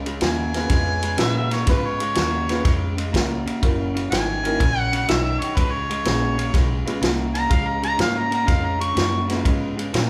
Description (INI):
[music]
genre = electric blues shuffle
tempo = 123 BPM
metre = 4/4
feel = swing 68% on 8ths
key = Db mixolydian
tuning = A4 = 442 Hz
[part]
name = electric guitar through a small old amp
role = riff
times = 0.0-10.1 s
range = Gb2 to Bb3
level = -29 LUFS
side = equal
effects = none
[part]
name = vintage muted fingered electric bass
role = bass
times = 0.0-10.1 s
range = Gb1 to Bb2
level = -29 LUFS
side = equal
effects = none
[part]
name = vintage drum kit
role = drums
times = 0.1-10.1 s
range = kick drum, ride cymbal, snare drum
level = -25 LUFS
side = equal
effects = none
[part]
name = mellow harmonica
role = second line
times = 0.2-9.3 s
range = Cb5 to Db6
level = -27 LUFS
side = equal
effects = overdrive
[part]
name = dark upright piano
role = accompaniment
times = 0.5-9.9 s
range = Ab3 to Cb5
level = -31 LUFS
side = equal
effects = none
[sound]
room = moderate large studio reverb, RT60 1.1 s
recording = band playing live in one room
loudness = -21 LUFS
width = mono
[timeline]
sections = 0.0-10.1 A section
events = harmonica solo 0.0-10.1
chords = 0.0 Db7; 3.6 Gb7; 5.6 Db7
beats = 0.22 0.70 1.19 | 1.68 2.16 2.65 3.14 | 3.62 4.11 4.60 5.08 | 5.57 6.05 6.54 7.03 | 7.51 8.00 8.48 8.97 | 9.46 9.94